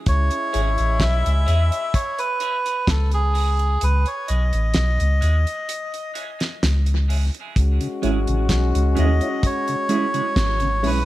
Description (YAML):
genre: dub reggae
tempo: 64 BPM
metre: 4/4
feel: straight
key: C# minor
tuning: A4 = 442 Hz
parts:
  - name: melodica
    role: melody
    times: 0.1-11.1 s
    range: G#4 to E5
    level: -24 LUFS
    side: right 1 dB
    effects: tape echo
  - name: clear trombone section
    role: second line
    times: 0.1-10.8 s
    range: G#3 to F#4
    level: -28 LUFS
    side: left 4 dB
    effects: high-pass filter, tape echo
  - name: soft dub sub bass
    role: bass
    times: 0.1-11.1 s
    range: G#1 to E2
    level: -18 LUFS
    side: equal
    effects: none
  - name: damped 70s drum kit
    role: drums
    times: 0.1-11.1 s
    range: hi-hat, kick drum, snare drum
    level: -24 LUFS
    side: equal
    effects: none
  - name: mellow tonewheel organ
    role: accompaniment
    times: 0.3-10.9 s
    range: C#3 to E4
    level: -31 LUFS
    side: left 2 dB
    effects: slow rotary speaker, high-pass filter
  - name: clean electric guitar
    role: accompaniment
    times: 0.5-11.0 s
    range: G#3 to G#4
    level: -29 LUFS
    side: right 6 dB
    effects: phaser, high-pass filter, tape echo
room: small room ambience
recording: none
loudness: -18 LUFS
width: side -16 dB against mid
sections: 0.0-11.1 A section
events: filter sweep 0.0-7.6; break 0.1-7.6; kick muted 3.8-7.6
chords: 0.0 C#m